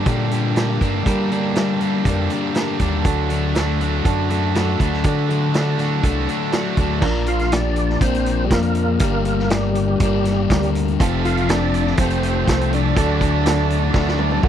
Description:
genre	classic rock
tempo	121 BPM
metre	4/4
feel	straight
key	G minor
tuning	A4 = 439 Hz
part	clear upright piano	accompaniment	0.0-14.5 s	C4 to F#5	-29 LUFS	right 8 dB	none
part	crunchy overdriven guitar	riff	0.0-14.5 s	F2 to D4	-23 LUFS	left 12 dB	none
part	overdriven electric guitar	riff	0.0-7.0, 11.0-14.5 s	G2 to G4	-25 LUFS	right 18 dB	none
part	growling fingered electric bass	bass	0.0-14.5 s	F1 to G3	-22 LUFS	right 1 dB	overdrive
part	vintage drum kit	drums	0.1-14.5 s	crash cymbal, hi-hat, kick drum, snare drum, toms	-21 LUFS	right 1 dB	none
part	overdriven tonewheel organ	melody	7.3-14.4 s	G3 to F4	-23 LUFS	right 1 dB	slow rotary speaker, chorus vibrato
room	little or no reverb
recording	dry, close 1970s-style studio recording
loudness	-16 LUFS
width	side -9 dB against mid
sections	0.0-7.0 A section; 7.0-14.5 B section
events	drum fill 14.0-14.5; upright piano fill 14.0-14.5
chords	0.0 Gm; 3.1 D; 7.0 Bb; 9.0 Gm; 11.0 F; 13.0 D

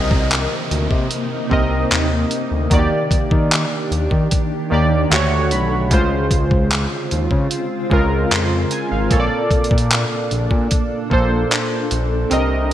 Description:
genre	contemporary R&B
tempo	75 BPM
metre	4/4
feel	straight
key	unclear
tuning	A4 = 440 Hz
part	warm analog keys	accompaniment	0.0-12.7 s	Bb2 to C6	-20 LUFS	right 1 dB	chorus
part	granular cloud pad	sustained chords	0.1-12.7 s	C3 to A4	-25 LUFS	equal	built-in reverb
part	smooth synth bass	bass	0.0-12.7 s	Ab1 to Eb3	-20 LUFS	equal	none
part	downlifter	sound effects	0.0-5.9 s	none	-31 LUFS	left 1 dB	none
part	dusty soul sampler-style drum kit	drums	0.1-12.5 s	handclaps, hi-hat, kick drum	-19 LUFS	equal	gated reverb
room	light reverb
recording	bright 1980s-style digital production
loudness	-15 LUFS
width	side -11 dB against mid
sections	0.0-12.7 A section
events	synth keys fill 4.3-5.9; kick muted 12.3-12.7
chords	0.0 Cm7; 2.7 Ebmaj7; 5.1 Dmaj7; 5.9 Dbmaj7; 9.1 Bbmaj7

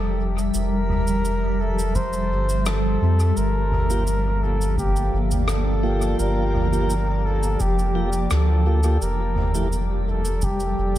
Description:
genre	ambient dub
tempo	85 BPM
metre	4/4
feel	straight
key	G dorian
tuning	A4 = 439 Hz
part	trumpet with bucket mute	melody	0.0-11.0 s	G4 to C5	-27 LUFS	equal	dub echo
part	granular cloud pad	sustained chords	0.0-11.0 s	F3 to E5	-27 LUFS	equal	built-in reverb
part	soft dub sub bass	bass	0.0-11.0 s	F1 to F2	-22 LUFS	equal	none
part	soft-mallet drum kit	drums	0.4-11.0 s	cabasa, rim click, toms	-30 LUFS	right 1 dB	dub echo
part	electronic kick drum	drums	2.0-10.6 s	none	-28 LUFS	equal	none
part	mellow tonewheel organ	stabs	3.9-9.7 s	A3 to G4	-30 LUFS	right 1 dB	slow rotary speaker, dub echo
room	light reverb, studio reverb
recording	none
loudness	-19 LUFS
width	side -13 dB against mid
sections	0.0-11.0 A section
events	none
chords	0.0 Fmaj9; 3.4 Gm7; 9.0 Fmaj9

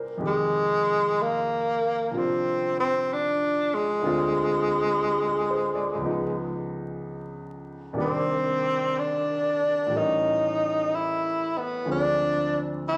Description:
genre	jazz ballad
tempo	62 BPM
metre	4/4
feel	swing 66% on 8ths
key	unclear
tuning	A4 = 440 Hz
part	warm grand piano	accompaniment	0.0-13.0 s	C2 to D5	-32 LUFS	equal	none
part	breathy tenor saxophone	melody	0.3-13.0 s	Ab3 to E4	-26 LUFS	equal	none
room	wet large studio reverb, RT60 1.2 s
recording	vinyl crackle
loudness	-25 LUFS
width	mono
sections	0.0-13.0 A section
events	none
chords	0.2 Fm9; 4.0 Dm7b5; 6.0 Db9; 8.0 Cm9; 9.9 A7b9; 11.9 Dm7b5

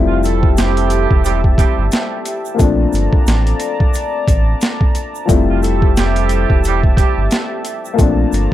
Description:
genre	hip hop, boom-bap hip-hop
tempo	89 BPM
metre	4/4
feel	swing 57% on 16ths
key	F major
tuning	A4 = 440 Hz
part	dark upright piano	accompaniment	0.0-8.5 s	F3 to E4	-20 LUFS	left 6 dB	high-pass filter, low-pass filter
part	warm analog pad	sustained chords	0.3-8.5 s	G4 to Bb5	-24 LUFS	left 1 dB	chorus, high-pass filter, low-pass filter
part	sub bass with octave	bass	0.0-8.5 s	E1 to Bb1	-16 LUFS	equal	none
part	mellow horn section	stabs	0.1-7.2 s	F3 to A4	-21 LUFS	right 12 dB	high-pass filter, low-pass filter, analog delay
part	tube shaker	percussion	0.2-8.5 s	none	-33 LUFS	right 21 dB	none
part	boom bap sampler-style drum kit	drums	0.3-8.5 s	hi-hat, kick drum, snare drum	-15 LUFS	equal	overdrive
room	small room ambience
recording	dark, warm production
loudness	-12 LUFS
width	side -13 dB against mid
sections	0.0-8.5 A section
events	none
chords	0.0 Fmaj9; 2.6 Bbmaj7; 5.3 Fmaj9; 8.0 Bbmaj7

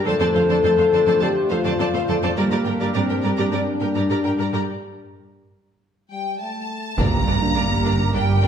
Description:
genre	cinematic, hybrid orchestral and electronic film score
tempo	104 BPM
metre	4/4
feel	straight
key	G minor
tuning	A4 = 440 Hz
part	rich symphonic viola section	accompaniment	0.0-8.5 s	Bb3 to C5	-29 LUFS	right 2 dB	none
part	hollow soft pad	sustained chords	0.0-8.5 s	G3 to C5	-29 LUFS	right 2 dB	chorus
part	mellow French horn section	sustained chords	0.0-8.5 s	G3 to A4	-22 LUFS	left 4 dB	none
part	clear symphonic violin section	second line	0.1-8.5 s	Bb4 to Bb5	-29 LUFS	left 1 dB	none
part	harp-like synth pluck	arpeggios	0.1-8.4 s	D3 to G4	-29 LUFS	right 2 dB	chorus
part	rich symphonic cello section	bass	0.1-8.5 s	F2 to G2	-25 LUFS	right 4 dB	none
part	rich symphonic violin section	melody	6.1-8.5 s	G5 to Bb5	-25 LUFS	equal	none
part	rich studio double bass section	bass	7.0-8.5 s	G1	-22 LUFS	right 2 dB	none
part	taiko ensemble	drums	7.0-7.5 s	none	-25 LUFS	right 1 dB	none
part	impact	sound effects	7.0-8.5 s	none	-26 LUFS	right 1 dB	none
room	wet recital hall reverb, RT60 1.4 s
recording	recorded in a church or concert hall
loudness	-18 LUFS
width	side -8 dB against mid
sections	0.0-7.0 A section; 7.0-8.5 B section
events	break 4.7-7.0; impact 7.0-8.5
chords	0.1 Dm7/F; 2.4 Gm; 4.7 N.C.; 7.0 Gm

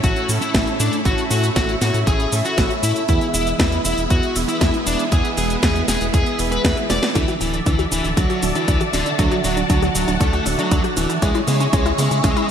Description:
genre	italo disco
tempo	118 BPM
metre	4/4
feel	straight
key	unclear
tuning	A4 = 438 Hz
part	fuzz lead guitar	melody	0.0-12.5 s	D3 to D5	-23 LUFS	left 1 dB	distortion, ping-pong delay
part	phased string machine	sustained chords	0.0-12.5 s	G#3 to C#6	-24 LUFS	equal	ensemble chorus, phaser
part	chorused polysynth	stabs	0.0-12.5 s	A2 to E5	-26 LUFS	right 3 dB	vintage 12-bit sampler grit
part	round analog bass	bass	0.0-12.3 s	D1 to C#3	-23 LUFS	equal	none
part	electronic kick drum	drums	0.0-12.3 s	none	-20 LUFS	equal	none
part	house drum kit	drums	0.0-12.5 s	cabasa, hi-hat, snare drum, toms	-24 LUFS	equal	high-pass filter on hats, high-pass filter on snare, high-pass filter on perc, high-pass filter on toms, high-pass filter on room
part	analog pluck	arpeggios	7.2-12.4 s	B3 to F#4	-26 LUFS	left 4 dB	chorus, digital delay
room	moderate lush hall reverb, RT60 1.9 s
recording	bright 1980s-style digital production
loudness	-16 LUFS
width	side -8 dB against mid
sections	0.0-7.2 A section; 7.2-12.5 B section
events	drum fill 6.9, 7.2-12.5; band accent 7.0; filter sweep on synth arpeggio sound 7.2-12.5; filter sweep on string machine 7.2-12.5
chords	0.0 A; 3.1 E; 7.2 Dadd9; 11.2 C#m

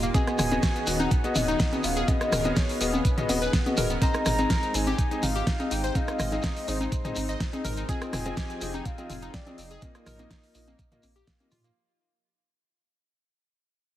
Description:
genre	progressive house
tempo	124 BPM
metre	4/4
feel	straight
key	unclear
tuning	A4 = 440 Hz
part	lush unison pad	sustained chords	0.0-11.7 s	D#3 to Ab5	-36 LUFS	equal	chorus, sidechain pumping
part	glassy wavetable pluck	arpeggios	0.0-11.7 s	Bb3 to Eb5	-34 LUFS	left 1 dB	chorus, sidechain pumping, ping-pong delay
part	round analog bass	bass	0.0-11.7 s	D#1 to Bb2	-33 LUFS	right 1 dB	sidechain pumping
part	pop drum kit	drums	0.0-11.7 s	hi-hat, rim click, snare drum	-33 LUFS	equal	small room ambience
part	shekere	percussion	0.0-11.7 s	none	-37 LUFS	equal	none
part	soft octave-layered synth lead	melody	0.1-11.3 s	B4 to Bb5	-34 LUFS	equal	chorus, tremolo, sidechain pumping, tape echo
part	dark grand piano	stabs	0.1-11.5 s	Bb3 to D#5	-32 LUFS	left 2 dB	sidechain pumping
part	electronic kick drum	drums	0.1-11.4 s	none	-26 LUFS	equal	small room ambience
part	electronic congas and toms	percussion	0.1-11.6 s	none	-32 LUFS	left 1 dB	sidechain pumping on perc, small room ambience, sidechain pumping on toms
room	light reverb, digital ambience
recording	heavily compressed radio sound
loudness	-24 LUFS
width	side -13 dB against mid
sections	0.0-11.8 A section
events	drop 0.0-11.8; fade-out 4.0-11.8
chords	0.1 B6/D#; 4.0 Ab; 7.9 Fm7; 9.8 Bbsus4

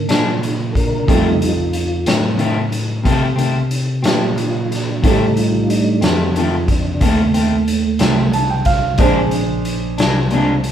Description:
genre	slow blues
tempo	61 BPM (dotted quarters)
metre	12/8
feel	straight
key	unclear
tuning	A4 = 438 Hz
part	dark concert grand piano	accompaniment	0.0-10.7 s	D4 to A5	-23 LUFS	right 5 dB	none
part	mellow tonewheel organ	sustained chords	0.0-10.6 s	G3 to Bb4	-20 LUFS	right 2 dB	slow rotary speaker, chorus vibrato
part	overdriven tine electric piano	bass	0.0-10.7 s	Bb1 to C3	-20 LUFS	equal	none
part	electric guitar through a small old amp	accompaniment	0.1-10.5 s	F2 to D4	-21 LUFS	left 2 dB	harmonic tremolo
part	raw garage drum kit	drums	0.1-10.7 s	hi-hat, kick drum, snare drum	-19 LUFS	equal	none
room	moderate large studio reverb, RT60 1.2 s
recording	band playing live in one room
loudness	-14 LUFS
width	side -9 dB against mid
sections	0.0-10.7 A section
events	tonewheel organ solo 0.0-10.7; grand piano fill 8.0-9.0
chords	0.0 Bb7; 1.1 F7; 9.0 Bb7

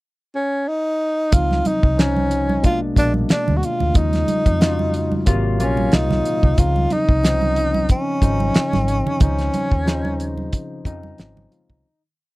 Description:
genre	lush 1970s-style soul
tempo	91 BPM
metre	4/4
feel	swing 54% on 16ths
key	Db major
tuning	A4 = 440 Hz
part	breathy tenor saxophone	melody	0.3-10.5 s	Db4 to Gb4	-21 LUFS	equal	none
part	barky tine electric piano	accompaniment	1.3-12.0 s	Bb2 to C5	-24 LUFS	left 2 dB	lush chorus
part	vintage muted fingered electric bass	bass	1.3-11.8 s	Ab1 to F2	-22 LUFS	equal	none
part	cloth-damped thuddy drum kit	drums	1.3-11.8 s	hi-hat, kick drum, snare drum	-16 LUFS	equal	none
part	congas	percussion	1.3-11.8 s	none	-27 LUFS	right 3 dB	none
room	little or no reverb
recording	dry, close 1970s-style studio recording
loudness	-16 LUFS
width	side -20 dB against mid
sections	0.0-1.3 pickup bar; 1.3-11.8 A section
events	fade-out 9.2-11.8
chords	0.0 N.C.; 1.3 Dbmaj9; 2.6 Bb7b9; 4.0 Ebm11; 5.3 Ab13; 6.6 Dbmaj9

